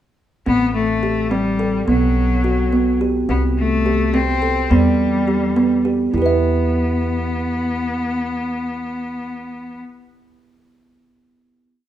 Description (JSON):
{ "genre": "contemporary instrumental, chamber music in an uneven meter", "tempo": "211 BPM (eighths)", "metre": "5/8", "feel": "straight", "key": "E minor", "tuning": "A4 = 440 Hz", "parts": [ { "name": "bright cello", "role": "melody", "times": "0.5-9.8 s", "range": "F#3 to C4", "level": "-21 LUFS", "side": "left 3 dB", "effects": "none" }, { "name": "kalimba", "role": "arpeggios", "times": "0.5-9.9 s", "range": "B3 to E5", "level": "-19 LUFS", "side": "right 3 dB", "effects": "none" }, { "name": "upright bass", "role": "bass", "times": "0.5-9.8 s", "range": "A1 to E2", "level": "-22 LUFS", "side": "equal", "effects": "none" } ], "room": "moderate recital hall reverb, RT60 1.4 s", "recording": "none", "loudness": "-16 LUFS", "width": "side -11 dB against mid", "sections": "0.5-6.1 A section; 6.1-9.0 final chord", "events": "none", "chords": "0.5 Am7; 1.9 Gmaj7/B (rootless); 3.3 C5; 4.7 Em" }